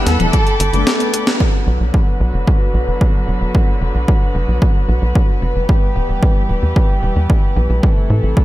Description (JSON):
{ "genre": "italo disco", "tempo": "112 BPM", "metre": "4/4", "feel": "straight", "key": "unclear", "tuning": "A4 = 436 Hz", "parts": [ { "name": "warm symphonic violin section", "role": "melody", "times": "0.0-0.9 s", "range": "A4", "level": "-22 LUFS", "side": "right 1 dB", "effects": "tape echo" }, { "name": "dark studio string section", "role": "sustained chords", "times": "0.0-8.4 s", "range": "C3 to E6", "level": "-22 LUFS", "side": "equal", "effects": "low-pass filter" }, { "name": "mellow synth brass", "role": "stabs", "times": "0.0-1.4 s", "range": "G3 to F#5", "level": "-23 LUFS", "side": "left 4 dB", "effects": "chorus, tape echo" }, { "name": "tight sequencer bass", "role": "bass", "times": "0.1-8.3 s", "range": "E1 to A2", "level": "-16 LUFS", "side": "equal", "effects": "none" }, { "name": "clean 12-bit digital drum machine", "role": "drums", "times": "0.1-8.4 s", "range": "crash cymbal, hi-hat, snare drum, toms", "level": "-20 LUFS", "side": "left 1 dB", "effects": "low-pass filter on hats, low-pass filter on snare, low-pass filter on toms, low-pass filter on cymbals, low-pass filter on room, gated reverb" }, { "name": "electronic kick drum", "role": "drums", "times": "0.3-8.4 s", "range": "none", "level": "-14 LUFS", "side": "equal", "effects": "none" } ], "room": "little or no reverb", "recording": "none", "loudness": "-13 LUFS", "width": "side -16 dB against mid", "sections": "0.0-1.4 A section; 1.4-8.4 B section", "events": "drum fill 0.9-1.4; band accent 1.3", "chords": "0.3 Gadd9; 1.4 Bm; 5.7 Em; 7.8 Am" }